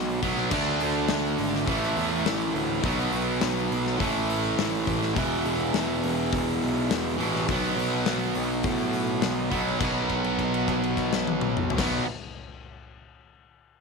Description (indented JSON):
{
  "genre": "classic rock",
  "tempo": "103 BPM",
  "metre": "4/4",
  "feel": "straight",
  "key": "B minor",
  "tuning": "A4 = 439 Hz",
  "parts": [
    { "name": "distorted electric guitar", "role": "riff", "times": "0.0-12.1 s", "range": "E2 to D4", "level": "-25 LUFS", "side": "right 2 dB", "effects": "distortion" },
    { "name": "fuzz picked electric bass", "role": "bass", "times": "0.0-12.0 s", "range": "E1 to A2", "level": "-31 LUFS", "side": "right 1 dB", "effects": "overdrive" },
    { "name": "huge arena drum kit", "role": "drums", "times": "0.2-11.9 s", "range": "crash cymbal, hi-hat, kick drum, snare drum, toms", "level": "-31 LUFS", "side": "left 6 dB", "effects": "none" }
  ],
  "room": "small room ambience",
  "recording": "1960s-style stereo",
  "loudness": "-23 LUFS",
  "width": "side -4 dB against mid",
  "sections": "0.0-9.8 A section; 9.8-12.1 B section",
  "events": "held note 9.8-11.8",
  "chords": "0.0 B5; 0.5 D5; 1.7 A5; 2.8 B5; 4.0 A5; 5.2 E5; 7.5 B5",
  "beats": "| 0.52 1.10 1.68 2.26 | 2.84 3.42 3.99 4.57 | 5.15 5.73 6.31 6.89 | 7.47 8.06 8.64 9.22 | 9.80 10.38 10.96 11.55"
}